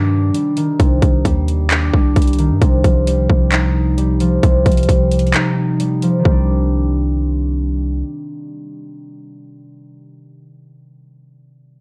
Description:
hip hop, trap; 132 BPM; 4/4; half-time; C minor; A4 = 440 Hz
concert harp; accompaniment; 0.0-10.4 s; C3 to Eb4; -20 LUFS; equal; low-pass filter
long sustained 808-style bass; bass; 0.0-8.0 s; C2 to G2; -19 LUFS; equal
trap drum kit; drums; 0.3-6.4 s; handclaps, hi-hat, kick drum; -18 LUFS; equal; overdrive
digital ambience; worn, warbling old tape, cassette tape, warbly pitch drift; -15 LUFS; mono
0.0-6.2 A section; 6.2-9.9 B section
break 5.3-6.2
0.0 Cmadd9; 2.6 Ebadd9/C; 6.2 Cmadd9

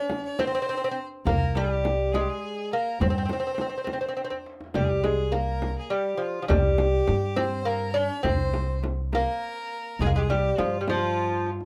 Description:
Persian modal ensemble; 69 BPM (dotted quarters); 6/8; straight; C dastgah shur; A4 = 441 Hz
lute; melody; 0.0-11.5 s; F3 to Db4+45c; -29 LUFS; equal
clear violin; second line; 0.0-11.5 s; F4 to Db5+49c; -37 LUFS; equal
frame drum; percussion; 0.1-11.0 s; -34 LUFS; equal
tombak; percussion; 0.1-11.7 s; -36 LUFS; equal
upright bass; bass; 1.3-11.6 s; C2 to G2; -30 LUFS; equal
light reverb; -26 LUFS; mono
0.0-4.8 A section; 4.8-11.7 B section
drum fill 4.2-4.8, 11.2-11.7

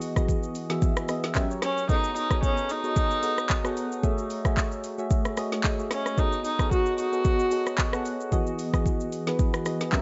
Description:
amapiano; 112 BPM; 4/4; swing 55% on 16ths; A4 = 440 Hz
soft electric-piano-like synth keys; accompaniment; 0.0-10.0 s; E3 to F#5; -32 LUFS; equal; chorus, phaser
afro-pop drum kit; drums; 0.0-10.0 s; handclaps, hi-hat, kick drum, rim click, shaker, snare drum; -29 LUFS; equal; vintage 12-bit sampler grit
warm viola; melody; 1.6-8.0 s; C#4 to F#4; -31 LUFS; equal; dub echo
light reverb, digital ambience; echo-heavy mix, nothing above 7.8 kHz; -26 LUFS; mono
0.0-10.0 A section
0.0 Emaj9; 1.4 F#7b9; 1.9 B13; 4.0 F#m9/A; 6.2 B13; 8.3 Emaj9

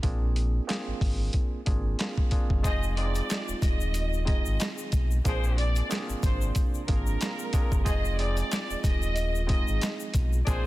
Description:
hip hop, boom-bap hip-hop; 92 BPM; 4/4; swing 58% on 16ths; F dorian; A4 = 440 Hz
barky tine electric piano; accompaniment; 0.0-10.7 s; Ab3 to Ab4; -36 LUFS; right 3 dB; medium stereo tremolo, high-pass filter, low-pass filter
sub bass with octave; bass; 0.0-10.7 s; Eb1 to B1; -28 LUFS; equal
boom bap sampler-style drum kit; drums; 0.0-10.6 s; handclaps, hi-hat, kick drum, snare drum; -27 LUFS; equal; vintage 12-bit sampler grit
dark analog pad; sustained chords; 2.6-10.7 s; C3 to F4; -43 LUFS; equal; chorus, phaser, high-pass filter, low-pass filter
mellow horn section; stabs; 2.6-10.7 s; F3 to Ab4; -41 LUFS; left 3 dB; high-pass filter, low-pass filter, digital delay
tube shaker; percussion; 2.6-10.6 s; -44 LUFS; left 9 dB
warm studio violin section; melody; 2.7-10.7 s; Bb4 to Eb5; -34 LUFS; equal; high-pass filter, low-pass filter, digital delay
small room ambience; dense, heavily limited modern master; -25 LUFS; side -17 dB against mid
0.0-2.6 A section; 2.6-10.7 B section
0.0 Bb9; 2.6 Fm7; 5.3 Bb9; 7.9 Fm7

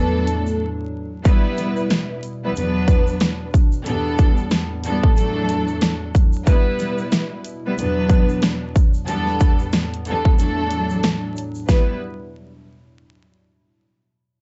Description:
hip hop, boom-bap hip-hop; 92 BPM; 4/4; swing 57% on 16ths; E minor; A4 = 440 Hz
vibraphone with soft mallets; melody; 0.0-0.6 s; A3 to B4; -28 LUFS; equal; tape echo
dark studio string section; accompaniment; 0.0-11.9 s; E2 to B4; -25 LUFS; equal; cassette tape
hollow soft pad; sustained chords; 0.0-12.0 s; E2 to E4; -32 LUFS; equal; chorus
big-room dance drum kit; drums; 0.3-11.9 s; hi-hat, kick drum, snare drum; -19 LUFS; equal
tube shaker; percussion; 0.3-12.0 s; -48 LUFS; equal
light reverb; dark, warm production, vinyl crackle, nothing above 7.9 kHz; -19 LUFS; mono
0.0-1.3 A section; 1.3-11.7 B section; 11.7-14.3 C section
break 0.6-1.3, 10.4-11.7
0.0 D/E; 1.3 Em; 2.6 Bm/E; 3.9 Gadd9/E; 5.2 D/E; 6.5 Em; 7.8 Bm/E; 9.1 Gadd9/E; 10.4 D/E; 11.7 Em

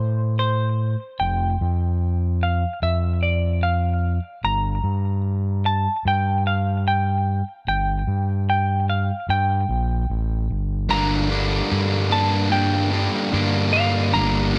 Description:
post-rock; 74 BPM; 4/4; straight; G minor; A4 = 441 Hz
semi-hollow electric guitar; melody; 0.0-14.6 s; C5 to Bb5; -27 LUFS; equal; tape echo
overdriven fingered electric bass; bass; 0.0-14.6 s; F1 to A2; -24 LUFS; equal
fuzz guitar; riff; 10.9-14.6 s; G2 to D4; -24 LUFS; equal; distortion
light reverb, digital ambience; -22 LUFS; mono
0.0-10.9 A section; 10.9-14.6 B section
build-up 10.9-14.6
0.0 Am; 1.2 Fsus2; 4.4 N.C.; 10.9 Gm

